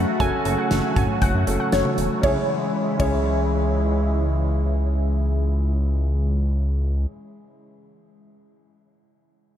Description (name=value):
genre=synth-pop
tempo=118 BPM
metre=4/4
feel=straight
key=C# minor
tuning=A4 = 439 Hz
part: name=warbly dusty pluck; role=second line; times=0.0-3.7 s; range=C#5 to G#5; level=-27 LUFS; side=equal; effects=chorus, phaser, ping-pong delay
part: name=warm concert grand piano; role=accompaniment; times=0.0-7.1 s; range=C#4 to A4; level=-29 LUFS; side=right 1 dB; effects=low-pass filter
part: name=phased analog pad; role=sustained chords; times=0.0-6.3 s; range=C#3 to F#4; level=-26 LUFS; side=equal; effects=phaser, chorus, low-pass filter
part: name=chorused synth bass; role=bass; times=0.0-7.1 s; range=E1 to F#2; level=-21 LUFS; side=equal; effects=none
part: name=modern studio drum kit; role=drums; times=0.2-3.1 s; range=hi-hat, kick drum, ride cymbal, snare drum, toms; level=-26 LUFS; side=equal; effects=none
room=wet cathedral reverb, RT60 5.5 s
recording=dreamy mix soaked in reverb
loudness=-19 LUFS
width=side -10 dB against mid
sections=0.0-2.2 A section; 2.2-6.3 B section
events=filter sweep 0.0-2.2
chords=0.0 F#m; 2.2 C#m